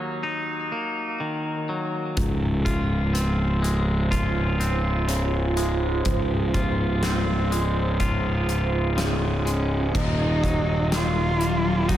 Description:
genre	post-rock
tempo	62 BPM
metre	4/4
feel	straight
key	Db major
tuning	A4 = 437 Hz
part	twangy electric guitar	arpeggios	0.0-12.0 s	Db2 to F4	-27 LUFS	left 1 dB	tape echo
part	ethereal airy pad	sustained chords	3.6-12.0 s	Gb3 to C6	-31 LUFS	right 3 dB	ensemble chorus, built-in reverb, phaser
part	fuzz picked electric bass	bass	2.2-12.0 s	Db1 to Eb1	-24 LUFS	equal	overdrive
part	huge arena drum kit	drums	2.2-12.0 s	crash cymbal, hi-hat, kick drum, snare drum	-29 LUFS	equal	none
part	warm cello	melody	9.5-12.0 s	Db4 to Gb4	-26 LUFS	right 1 dB	tape echo
room	moderate lush hall reverb, RT60 3.0 s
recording	dreamy mix soaked in reverb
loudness	-21 LUFS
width	side -12 dB against mid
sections	0.0-9.9 A section; 9.9-12.0 B section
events	none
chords	0.0 Ebm; 2.2 Dbmaj7; 9.9 Ebm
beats	0.23 1.20 | 2.17 3.14 4.11 5.08 | 6.05 7.02 8.00 8.97 | 9.94 10.91 11.89

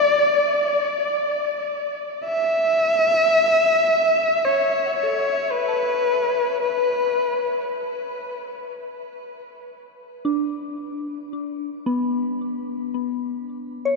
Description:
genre	ambient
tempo	free time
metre	none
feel	none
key	unclear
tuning	A4 = 439 Hz
part	dark electric violin	melody	0.0-7.7 s	B4 to E5	-19 LUFS	left 1 dB	shimmer reverb, ping-pong delay
part	soft synth bell	arpeggios	4.9-14.0 s	B3 to A5	-26 LUFS	left 2 dB	chorus, shimmer reverb, ping-pong delay
room	wet cathedral reverb, RT60 7.7 s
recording	none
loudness	-19 LUFS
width	side -2 dB against mid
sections	0.0-2.2 A section; 2.2-14.0 B section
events	fade-in on synth bell 2.2-14.0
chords	none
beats	free time

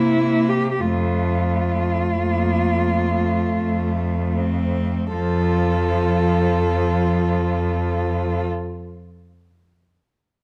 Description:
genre	classical, lyrical piece for cello ensemble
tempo	38-51 BPM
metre	3/4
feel	rubato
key	F major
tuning	A4 = 440 Hz
part	clear cello	melody	0.0-8.5 s	A3 to A4	-29 LUFS	equal	none
part	rich cello	second line	0.0-8.5 s	E4 to G4	-26 LUFS	equal	none
part	rich cello	accompaniment	0.0-8.4 s	F3 to Bb3	-28 LUFS	equal	none
part	rich cello	bass	0.0-8.4 s	F2 to C3	-24 LUFS	equal	none
room	moderate stone room reverb, RT60 1.4 s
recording	dark, warm production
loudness	-21 LUFS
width	mono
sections	0.0-5.1 A section; 5.1-9.7 B section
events	slowing down 0.0-5.1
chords	0.0 C7; 0.8 F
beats	| 0.81 2.16 3.59 | 5.13 6.62 8.15

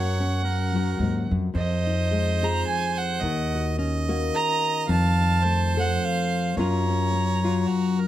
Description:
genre	acoustic folk duo or small band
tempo	108 BPM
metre	3/4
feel	swing 57% on 8ths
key	unclear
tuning	A4 = 442 Hz
part	dark fiddle	melody	0.0-8.0 s	Eb5 to Bb5	-27 LUFS	right 3 dB	none
part	bright harmonica	second line	0.0-8.1 s	Gb4 to F5	-31 LUFS	right 6 dB	none
part	nylon-string guitar	accompaniment	0.0-8.1 s	F2 to A4	-26 LUFS	left 3 dB	none
part	upright bass	bass	0.0-7.6 s	Eb2 to Gb2	-25 LUFS	equal	none
room	light reverb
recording	close, detailed microphones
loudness	-21 LUFS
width	side -13 dB against mid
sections	0.0-8.1 A section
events	none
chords	0.0 Gbmaj7; 1.5 Fm7; 3.2 Ebm7; 4.9 F7; 6.6 Gbmaj7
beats	0.43 0.99 | 1.55 2.11 2.66 | 3.22 3.78 4.34 | 4.89 5.45 6.01 | 6.57 7.12 7.68

